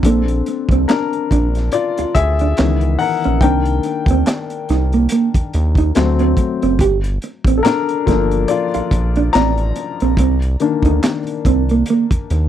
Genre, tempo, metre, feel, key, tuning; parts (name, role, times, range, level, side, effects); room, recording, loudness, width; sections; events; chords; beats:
R&B, neo-soul; 71 BPM; 4/4; swing 58% on 16ths; C dorian; A4 = 438 Hz
warm upright piano; accompaniment; 0.0-12.5 s; Eb3 to Bb5; -19 LUFS; left 7 dB
round analog bass; bass; 0.0-12.5 s; F#1 to Eb2; -17 LUFS; equal
crunchy breakbeat drum kit; drums; 0.0-12.5 s; handclaps, hi-hat, kick drum, snare drum; -18 LUFS; equal
mellow electric guitar; second line; 0.1-12.4 s; Bb3 to G4; -18 LUFS; right 7 dB
little or no reverb; dry, close 1970s-style studio recording; -14 LUFS; side -10 dB against mid
0.0-12.5 A section
upright piano solo 0.0-12.5
0.0 Bbmaj7; 2.6 Dbm9; 3.4 Cm9; 5.9 D7; 6.8 Gm7; 10.2 Cm9
| 0.03 0.88 1.72 2.57 | 3.41 4.26 5.10 5.95 | 6.79 7.64 8.48 9.33 | 10.17 11.02 11.86